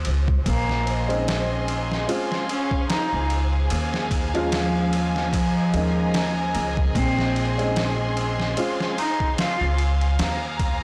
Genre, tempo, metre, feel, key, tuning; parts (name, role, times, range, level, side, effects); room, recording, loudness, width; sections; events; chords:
trip hop; 74 BPM; 4/4; swing 56% on 16ths; A4 = 442 Hz
upright bass; bass; 0.0-10.8 s; Bb1 to Eb2; -27 LUFS; equal
trip hop sampler-style drum kit; drums; 0.0-10.8 s; kick drum, ride cymbal, snare drum; -30 LUFS; equal; overdrive, studio reverb
flickering grainy texture; texture; 0.0-10.8 s; C5; -42 LUFS; equal
dark cello; melody; 0.5-9.8 s; F3 to F4; -29 LUFS; equal; tape echo
warm symphonic violin section; sustained chords; 0.5-10.8 s; Ab4 to C6; -32 LUFS; equal; vintage 12-bit sampler grit
warm upright piano; accompaniment; 1.1-8.9 s; F3 to F4; -30 LUFS; equal; harmonic tremolo, tape echo
light reverb, small room ambience; blown-out, overdriven recording, overdrive; -23 LUFS; mono
0.0-10.8 A section
0.5 Bbm11; 2.1 Dbmaj7; 3.7 Eb9sus4; 5.3 Eb7sus4; 7.0 Bbm11; 8.6 Dbmaj7; 10.2 Ebsus4